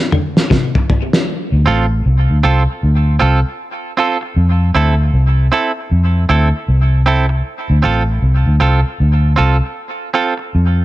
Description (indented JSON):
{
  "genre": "dub reggae",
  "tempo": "78 BPM",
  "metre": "4/4",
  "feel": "swing 61% on 16ths",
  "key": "D minor",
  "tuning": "A4 = 440 Hz",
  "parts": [
    { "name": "clean electric guitar", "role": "riff", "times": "0.1-0.7 s", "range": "C3 to D3", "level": "-22 LUFS", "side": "left 4 dB", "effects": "dub echo" },
    { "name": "cloth-damped thuddy drum kit", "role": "drums", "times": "0.1-1.3 s", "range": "kick drum, snare drum, toms", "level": "-14 LUFS", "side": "equal", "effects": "none" },
    { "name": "vintage muted fingered electric bass", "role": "bass", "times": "1.5-10.8 s", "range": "A1 to F2", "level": "-12 LUFS", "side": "equal", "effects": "none" },
    { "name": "clean electric guitar", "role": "accompaniment", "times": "1.7-10.4 s", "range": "C4 to A4", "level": "-18 LUFS", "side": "right 4 dB", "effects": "dub echo" }
  ],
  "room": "small room ambience",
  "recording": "echo-heavy mix",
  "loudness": "-12 LUFS",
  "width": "side -16 dB against mid",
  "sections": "0.0-1.3 A section; 1.3-10.8 B section",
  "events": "break 0.0-1.3; drum fill 0.0-1.3",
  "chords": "0.0 N.C.; 1.3 Dm7; 4.4 Fmaj7; 7.4 Dm7"
}